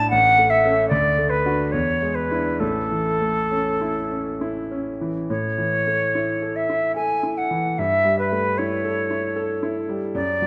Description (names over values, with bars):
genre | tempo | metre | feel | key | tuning
classical, romantic duo for flute and grand piano | 66-77 BPM | 3/4 | rubato | A major | A4 = 440 Hz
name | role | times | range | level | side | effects
silver concert flute | melody | 0.0-10.5 s | A4 to G#5 | -23 LUFS | equal | none
clear concert grand piano | accompaniment | 0.0-10.5 s | A1 to A4 | -27 LUFS | equal | none
room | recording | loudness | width
moderate concert hall reverb, RT60 1.8 s | none | -22 LUFS | mono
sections
0.0-5.3 A section; 5.3-10.5 B section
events
none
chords
0.1 A; 0.9 D; 1.7 E7; 2.6 A; 7.8 A7/G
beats
| 0.12 0.91 1.73 | 2.61 3.51 4.40 | 5.29 6.15 6.96 | 7.78 8.58 9.36 | 10.15